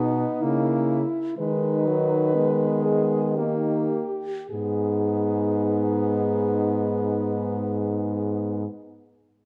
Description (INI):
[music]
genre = classical, lyrical piece for horn quartet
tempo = 51-72 BPM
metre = 3/4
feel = rubato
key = G# minor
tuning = A4 = 440 Hz
[part]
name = warm French horn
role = melody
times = 0.0-8.6 s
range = D#4 to B4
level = -29 LUFS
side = equal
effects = none
[part]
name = mellow French horn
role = second line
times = 0.0-8.7 s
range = B3 to D#4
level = -33 LUFS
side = equal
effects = none
[part]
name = clear French horn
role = accompaniment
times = 0.0-8.7 s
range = F#3 to B3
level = -31 LUFS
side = equal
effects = none
[part]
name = warm French horn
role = bass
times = 0.0-8.7 s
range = G#2 to D#3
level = -29 LUFS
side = equal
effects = none
[sound]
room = moderate recital hall reverb, RT60 1.4 s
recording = dark, warm production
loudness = -24 LUFS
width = mono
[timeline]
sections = 0.0-4.5 A section; 4.5-7.9 B section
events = slowing down 0.0-4.5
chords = 0.4 C#m; 1.4 G#m/D#; 3.4 D#; 4.5 G#m